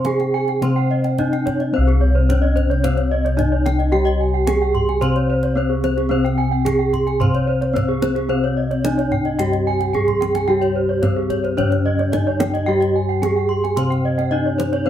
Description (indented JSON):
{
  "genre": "Balinese gamelan",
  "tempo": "110 BPM",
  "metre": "4/4",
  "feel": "straight",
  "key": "C pelog",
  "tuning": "A4 = 440 Hz",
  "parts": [
    { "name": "gamelan-type bronze metallophone", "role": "melody", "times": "0.0-14.9 s", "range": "C4 to C5", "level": "-22 LUFS", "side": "right 1 dB", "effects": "none" },
    { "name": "gamelan-type bronze metallophone", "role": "accompaniment", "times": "0.0-14.9 s", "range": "C3 to C4", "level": "-27 LUFS", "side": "left 2 dB", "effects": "none" },
    { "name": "gamelan-type bronze metallophone", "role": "arpeggios", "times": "0.0-14.9 s", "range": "Ab4-20c to C6", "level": "-25 LUFS", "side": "right 5 dB", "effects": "none" },
    { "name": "gamelan-type bossed gongs", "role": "bass", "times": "0.0-14.9 s", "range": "C2 to C5", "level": "-20 LUFS", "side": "left 1 dB", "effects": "none" },
    { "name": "kendang", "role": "percussion", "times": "0.0-14.8 s", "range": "none", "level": "-25 LUFS", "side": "right 2 dB", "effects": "none" },
    { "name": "gamelan-type bronze metallophone", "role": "arpeggios", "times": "0.1-14.9 s", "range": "Ab4-20c to C6", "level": "-26 LUFS", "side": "left 7 dB", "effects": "none" }
  ],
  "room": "moderate studio reverb, RT60 0.7 s",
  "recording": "band playing live in one room",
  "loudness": "-16 LUFS",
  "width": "side -10 dB against mid",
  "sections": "0.0-1.7 A section; 1.7-14.9 B section",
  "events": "drum fill 9.9-10.5",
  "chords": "none"
}